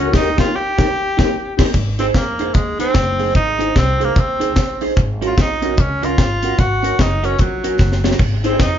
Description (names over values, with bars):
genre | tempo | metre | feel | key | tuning
ska | 149 BPM | 4/4 | swing 62% on 8ths | Ab mixolydian | A4 = 440 Hz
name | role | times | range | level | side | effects
breathy tenor saxophone | melody | 0.0-8.8 s | Gb3 to G4 | -20 LUFS | equal | none
electric guitar at the edge of break-up | accompaniment | 0.0-8.6 s | Db4 to C5 | -23 LUFS | right 4 dB | phaser
mellow tonewheel organ | stabs | 0.0-1.7, 8.4-8.6 s | Eb4 to C5 | -22 LUFS | left 6 dB | slow rotary speaker
upright bass | bass | 0.0-8.8 s | Gb1 to F2 | -22 LUFS | equal | none
deep reggae drum kit | drums | 0.1-8.7 s | crash cymbal, hi-hat, kick drum, snare drum | -17 LUFS | equal | tape echo
room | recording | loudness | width
moderate large studio reverb, RT60 0.9 s | band playing live in one room, nothing above 7.5 kHz | -14 LUFS | side -10 dB against mid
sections
0.0-1.7 A section; 1.7-8.8 A section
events
tenor saxophone solo 0.0-1.7, 1.7-8.8; band accent 0.1-1.7; drum fill 7.8-8.2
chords
0.1 Eb; 1.7 Ab; 5.0 Gb/Ab; 8.2 Ab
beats
| 0.13 0.53 0.93 1.34 | 1.74 2.14 2.55 2.95 | 3.35 3.76 4.16 4.57 | 4.97 5.37 5.78 6.18 | 6.58 6.99 7.39 7.79 | 8.20 8.60